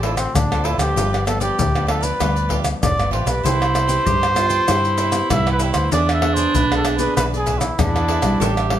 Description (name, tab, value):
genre	samba and choro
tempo	97 BPM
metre	4/4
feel	straight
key	unclear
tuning	A4 = 440 Hz
part	trumpet with cup mute	melody	0.0-8.8 s	C4 to E5	-21 LUFS	equal	none
part	cavaquinho	accompaniment	0.0-8.7 s	E4 to G5	-29 LUFS	right 7 dB	none
part	nylon-string guitar	accompaniment	0.0-8.8 s	G2 to G#4	-27 LUFS	left 3 dB	none
part	vintage muted fingered electric bass	bass	0.0-8.8 s	F1 to G2	-22 LUFS	equal	none
part	pandeiro, maracas, tamborim and surdo	percussion	0.0-8.8 s	none	-22 LUFS	left 2 dB	none
part	bright clarinet	second line	3.4-8.8 s	D4 to G4	-23 LUFS	right 7 dB	none
room	light reverb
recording	none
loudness	-16 LUFS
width	side -10 dB against mid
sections	0.0-8.8 A section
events	none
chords	0.0 Dm7; 1.0 G7; 3.5 Cmaj7; 5.9 E7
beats	0.35 | 0.97 1.59 2.21 2.83 | 3.45 4.07 4.69 5.31 | 5.93 6.55 7.17 7.78 | 8.40